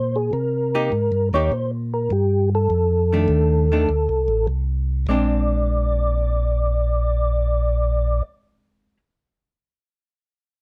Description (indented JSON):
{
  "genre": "soul jazz organ trio",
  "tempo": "101 BPM",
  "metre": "4/4",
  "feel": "swing 69% on 8ths",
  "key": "Bb mixolydian",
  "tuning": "A4 = 442 Hz",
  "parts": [
    { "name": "percussive tonewheel organ", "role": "melody", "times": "0.0-8.2 s", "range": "G4 to D5", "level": "-25 LUFS", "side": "equal", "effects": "slow rotary speaker, chorus vibrato" },
    { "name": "mellow tonewheel organ", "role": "bass", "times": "0.0-8.2 s", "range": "A1 to C3", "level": "-23 LUFS", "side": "equal", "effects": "slow rotary speaker" },
    { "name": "archtop guitar, miked and amplified", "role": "accompaniment", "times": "0.7-9.0 s", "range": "Eb3 to G4", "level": "-26 LUFS", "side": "equal", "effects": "none" }
  ],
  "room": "little or no reverb",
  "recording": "none",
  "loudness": "-21 LUFS",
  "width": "mono",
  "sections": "0.0-5.1 A section; 5.1-7.5 B section",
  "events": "none",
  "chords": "0.3 Cm7; 2.7 F6; 5.1 Bb9"
}